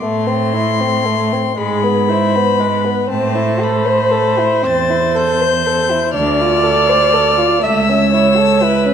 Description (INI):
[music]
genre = classical, slow romantic movement for string quartet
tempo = 38-41 BPM (dotted quarters)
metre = 6/8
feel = rubato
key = A minor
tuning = A4 = 440 Hz
[part]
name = warm violin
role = melody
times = 0.0-8.9 s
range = A5 to A6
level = -19 LUFS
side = left 11 dB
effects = none
[part]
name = dark violin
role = second line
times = 0.0-8.9 s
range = G#3 to C5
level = -18 LUFS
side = left 4 dB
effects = none
[part]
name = warm cello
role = bass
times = 0.0-8.9 s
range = C#2 to A2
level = -18 LUFS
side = right 5 dB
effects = none
[part]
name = dark viola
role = accompaniment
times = 1.6-8.9 s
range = G#4 to E5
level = -16 LUFS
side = right 2 dB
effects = none
[sound]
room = wet recital hall reverb, RT60 1.3 s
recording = none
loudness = -12 LUFS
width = side -8 dB against mid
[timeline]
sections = 0.0-8.9 A section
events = none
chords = 0.0 Am; 1.6 E/G# (rootless); 3.1 Am; 6.2 Dm; 7.6 A/C#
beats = | 0.02 1.58 | 3.12 4.65 | 6.16 7.63